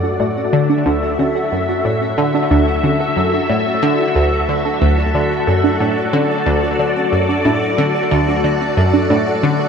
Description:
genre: ambient, sequencer-driven space music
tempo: 91 BPM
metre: 4/4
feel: straight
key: D major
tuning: A4 = 440 Hz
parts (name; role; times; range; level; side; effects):
- string machine, full ensemble; sustained chords; 0.0-9.7 s; F#4 to E5; -18 LUFS; left 1 dB; ensemble chorus
- warbly dusty pluck; arpeggios; 0.0-9.7 s; C#4 to D5; -21 LUFS; moving between equal and right 7 dB; chorus, auto-pan, vintage 12-bit sampler grit, tape echo
- analog pluck; riff; 0.0-9.6 s; D2 to D3; -17 LUFS; left 1 dB; chorus, phaser, tape echo
- pulsing gated texture; texture; 0.0-9.7 s; F#4 to F#5; -25 LUFS; left 3 dB; chorus, built-in reverb
room: wet spring reverb, RT60 2.5 s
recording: echo-heavy mix, cassette tape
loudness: -14 LUFS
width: side -6 dB against mid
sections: 0.0-9.7 A section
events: none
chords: 0.0 D

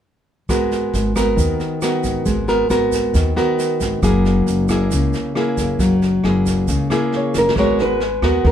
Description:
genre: bossa nova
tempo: 136 BPM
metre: 4/4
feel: straight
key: G# minor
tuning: A4 = 444 Hz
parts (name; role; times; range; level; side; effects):
- nylon-string guitar; accompaniment; 0.5-8.5 s; C#3 to A#4; -17 LUFS; equal; none
- upright bass; bass; 0.5-8.5 s; F#1 to D#2; -21 LUFS; equal; none
- jazz brush drum kit; drums; 0.5-8.5 s; kick drum, rim click, snare drum; -26 LUFS; right 1 dB; none
- tube shaker; percussion; 0.5-7.6 s; none; -34 LUFS; right 7 dB; none
- nylon-string guitar; melody; 7.2-8.5 s; A#4 to C#5; -19 LUFS; equal; plate reverb
room: wet studio reverb, RT60 0.5 s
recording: heard from further back in the room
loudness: -15 LUFS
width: side -9 dB against mid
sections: 0.5-7.6 A section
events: drum fill 7.3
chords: 0.5 G#m9; 4.0 F#9; 7.6 G#m9

